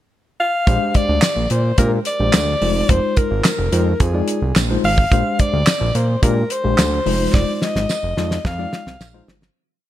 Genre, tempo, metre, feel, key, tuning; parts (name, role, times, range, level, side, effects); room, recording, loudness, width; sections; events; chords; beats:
early-eighties boogie funk; 108 BPM; 4/4; straight; F dorian; A4 = 439 Hz
breathy alto saxophone; melody; 0.4-9.2 s; Ab4 to F5; -21 LUFS; left 1 dB
tine electric piano; accompaniment; 0.7-9.3 s; Ab3 to D5; -23 LUFS; left 3 dB; overdrive, fast stereo tremolo, tube saturation
fat analog bass; bass; 0.7-9.5 s; F1 to Bb2; -20 LUFS; right 1 dB
damped 70s drum kit; drums; 0.7-9.6 s; handclaps, hi-hat, kick drum, snare drum; -18 LUFS; equal
tambourine; percussion; 1.2-9.1 s; -31 LUFS; right 11 dB
light reverb; bright 1980s-style digital production; -15 LUFS; side -13 dB against mid
0.0-0.7 pickup bar; 0.7-9.6 verse
fade-out 7.3-9.6; drum fill 7.3-9.6
0.0 N.C.; 0.7 Bb13; 2.6 Fm7; 5.1 Bb13; 7.1 Fm7
0.12 | 0.67 1.23 1.78 2.34 | 2.89 3.45 4.00 4.56 | 5.12 5.67 6.23 6.78 | 7.34 7.89 8.45 9.00